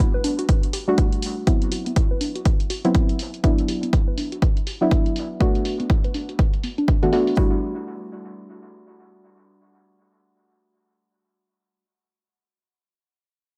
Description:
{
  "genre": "deep house",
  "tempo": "122 BPM",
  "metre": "4/4",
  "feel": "swing 60% on 16ths",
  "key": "E minor",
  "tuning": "A4 = 440 Hz",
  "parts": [
    { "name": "warbly dusty pluck", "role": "arpeggios", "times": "0.0-7.6 s", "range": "E3 to E5", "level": "-32 LUFS", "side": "equal", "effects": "chorus, sidechain pumping, dub echo" },
    { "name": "deep mellow chord stab", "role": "stabs", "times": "0.0-11.9 s", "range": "F#3 to F#4", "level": "-26 LUFS", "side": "equal", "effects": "chorus, dub echo" },
    { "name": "electronic hi-hat", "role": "drums", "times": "0.0-7.4 s", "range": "none", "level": "-36 LUFS", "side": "equal", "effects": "low-pass filter on hats, low-pass filter on perc, low-pass filter on snare, low-pass filter on room" },
    { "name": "electronic kick drum", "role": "drums", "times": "0.0-7.5 s", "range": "none", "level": "-22 LUFS", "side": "equal", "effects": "none" }
  ],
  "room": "little or no reverb",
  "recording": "none",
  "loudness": "-21 LUFS",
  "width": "mono",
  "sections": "0.0-7.4 A section; 7.4-11.3 B section",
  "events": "filter sweep on synth pluck 0.0-7.4",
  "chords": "0.0 Em11 (rootless); 1.5 D13 (rootless); 3.2 E7sus2/F#; 5.4 Bm7; 7.4 Em11 (rootless)"
}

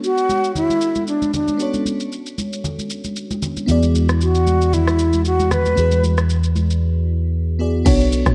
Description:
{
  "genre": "amapiano",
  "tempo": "115 BPM",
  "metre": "4/4",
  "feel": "swing 55% on 16ths",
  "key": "unclear",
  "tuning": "A4 = 441 Hz",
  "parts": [
    { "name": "mellow hollow concert flute", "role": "melody", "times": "0.0-6.0 s", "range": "D4 to B4", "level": "-21 LUFS", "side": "equal", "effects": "digital delay" },
    { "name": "crystalline FM electric piano", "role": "accompaniment", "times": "0.0-8.3 s", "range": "B3 to D5", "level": "-27 LUFS", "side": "equal", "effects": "chorus, phaser" },
    { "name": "afro-pop drum kit", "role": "drums", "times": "0.0-8.3 s", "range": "crash cymbal, kick drum, rim click, shaker", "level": "-26 LUFS", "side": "equal", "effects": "none" },
    { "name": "congas", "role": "percussion", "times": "0.3-6.7 s", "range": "none", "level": "-30 LUFS", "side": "equal", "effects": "none" },
    { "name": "fingered electric bass", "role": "bass", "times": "3.7-7.8 s", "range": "E2", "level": "-20 LUFS", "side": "equal", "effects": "none" },
    { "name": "deep log drum bass", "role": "bass", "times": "7.9-8.3 s", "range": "A1 to B1", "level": "-19 LUFS", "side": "equal", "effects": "none" }
  ],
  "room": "light reverb",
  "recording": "worn, warbling old tape, cassette tape, warbly pitch drift",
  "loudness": "-18 LUFS",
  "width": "mono",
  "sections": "0.0-7.9 A section",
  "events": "break 6.8-7.9",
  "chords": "0.0 Bm9; 3.7 E9"
}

